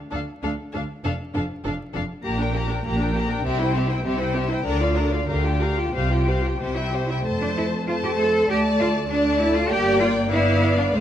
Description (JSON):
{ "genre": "quick classical-period movement for string orchestra", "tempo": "98 BPM", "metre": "2/4", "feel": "rubato", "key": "F major", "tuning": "A4 = 435 Hz", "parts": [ { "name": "rich symphonic violin section", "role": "melody", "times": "0.1-11.0 s", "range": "D5 to Bb5", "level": "-30 LUFS", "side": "left 6 dB", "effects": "none" }, { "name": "rich chamber violin section", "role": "second line", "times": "0.1-11.0 s", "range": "G4 to E5", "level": "-28 LUFS", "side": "left 1 dB", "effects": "none" }, { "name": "rich symphonic viola section", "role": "accompaniment", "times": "0.1-11.0 s", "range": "A3 to G4", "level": "-27 LUFS", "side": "equal", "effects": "none" }, { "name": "rich symphonic cello section", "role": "bass", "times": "0.1-11.0 s", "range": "D2 to A4", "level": "-25 LUFS", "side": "right 1 dB", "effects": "none" }, { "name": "rich symphonic double bass section", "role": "bass", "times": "0.1-11.0 s", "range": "F1 to F2", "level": "-27 LUFS", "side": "right 1 dB", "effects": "none" } ], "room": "moderate recital hall reverb, RT60 1.4 s", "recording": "close, detailed microphones, vinyl crackle", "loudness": "-20 LUFS", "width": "side -10 dB against mid", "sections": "0.0-7.3 A section; 7.3-11.0 B section", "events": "none", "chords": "0.0 Dm; 1.0 Dm/F; 2.2 Gm/Bb; 3.5 C; 4.7 Bb/D; 5.3 Gm7/D; 5.9 Csus4; 6.6 C; 7.3 F; 8.5 Dm; 9.7 Gm; 10.3 G7", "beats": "0.44 | 1.04 1.65 | 2.25 2.85 | 3.45 4.05 | 4.66 5.28 | 5.94 6.61 | 7.26 7.88 | 8.49 9.10 | 9.70 10.31 | 10.94" }